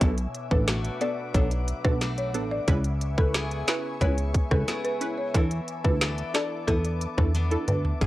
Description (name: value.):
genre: dancehall.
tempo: 90 BPM.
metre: 4/4.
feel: straight.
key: unclear.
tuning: A4 = 440 Hz.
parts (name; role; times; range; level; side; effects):
punchy chord stab; accompaniment; 0.0-8.1 s; A3 to B4; -32 LUFS; equal; chorus.
glassy FM pad; sustained chords; 0.0-8.1 s; B4 to D6; -37 LUFS; left 3 dB; ensemble chorus, built-in reverb, sidechain pumping.
picked steel-string acoustic guitar; arpeggios; 0.0-8.1 s; A2 to A4; -37 LUFS; left 2 dB; none.
plucky analog bass; bass; 0.0-8.1 s; A1 to E2; -27 LUFS; equal; none.
island pop drum kit; drums; 0.0-8.1 s; hi-hat, kick drum, rim click, snare drum, toms; -25 LUFS; equal; none.
folk marimba with medium mallets; melody; 0.5-7.8 s; A4 to D5; -32 LUFS; equal; analog delay.
room: little or no reverb.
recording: dry, gritty hardware recording, cassette tape.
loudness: -24 LUFS.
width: side -16 dB against mid.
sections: 0.0-8.0 A section.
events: drum fill 7.3-8.0.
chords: 0.0 Bm7; 2.7 C#m7; 5.3 E7sus4.